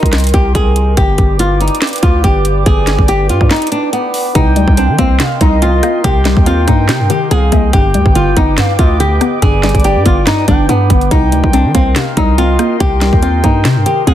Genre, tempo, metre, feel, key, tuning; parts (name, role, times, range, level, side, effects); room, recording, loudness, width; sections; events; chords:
hip hop, trap; 142 BPM; 4/4; half-time; C minor; A4 = 442 Hz
flamenco guitar; melody; 0.0-14.1 s; B3 to Ab4; -15 LUFS; left 1 dB
warbly tape-like pad; sustained chords; 0.0-14.1 s; Bb4 to D6; -22 LUFS; right 1 dB; chorus, built-in reverb
growling 808-style bass; bass; 0.0-14.1 s; G1 to Eb3; -13 LUFS; equal
trap drum kit; drums; 0.0-14.1 s; handclaps, hi-hat, kick drum, rim click, snare drum; -13 LUFS; equal
gliding portamento lead; second line; 4.4-14.1 s; D5 to G5; -21 LUFS; right 2 dB; chorus, ping-pong delay
glassy wavetable pluck; accompaniment; 4.4-14.1 s; G2 to D4; -17 LUFS; left 2 dB; chorus
digital ambience; dense, heavily limited modern master; -9 LUFS; side -11 dB against mid
0.0-4.4 A section; 4.4-14.1 B section
break 0.0-4.4
0.0 Cm7; 1.0 G; 4.4 Cm7; 7.7 G; 11.1 Cm7